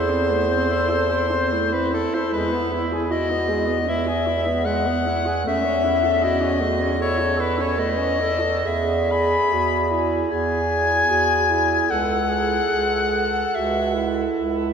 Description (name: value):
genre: classical, lyrical piece for single-reed quartet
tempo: 75 BPM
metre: 4/4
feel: uneven beats, rubato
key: unclear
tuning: A4 = 442 Hz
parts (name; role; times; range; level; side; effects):
- warm soprano saxophone; melody; 0.0-14.4 s; A4 to B5; -22 LUFS; left 4 dB; none
- mellow alto saxophone; second line; 0.0-14.7 s; B3 to B4; -26 LUFS; right 4 dB; none
- mellow tenor saxophone; accompaniment; 0.0-14.7 s; G#3 to A4; -28 LUFS; equal; none
- warm bass clarinet; bass; 0.0-14.7 s; C#2 to E2; -25 LUFS; right 2 dB; none
room: wet cathedral reverb, RT60 4.4 s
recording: none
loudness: -19 LUFS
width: side -7 dB against mid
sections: 0.0-14.7 A section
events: none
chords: 0.0 Am/E; 2.3 E; 5.5 A/E; 8.6 E; 11.9 A/C#